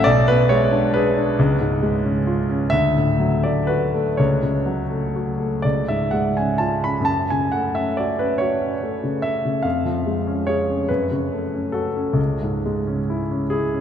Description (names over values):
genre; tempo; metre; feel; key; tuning
classical, romantic nocturne for solo piano; 40-50 BPM (dotted quarters); 12/8; rubato; F# minor; A4 = 440 Hz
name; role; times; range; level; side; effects
warm concert grand piano; solo; 0.0-13.8 s; B1 to B5; -18 LUFS; equal; none
room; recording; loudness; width
wet cathedral reverb, RT60 5.3 s; in a vast, echoing space; -18 LUFS; side -8 dB against mid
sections
0.0-13.8 A section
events
none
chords
0.1 G#dim/B; 1.4 C#; 2.7 D; 4.2 F#m/C#; 5.6 C#; 7.1 F#m; 9.6 C#/E#; 10.9 F#m; 12.2 C#m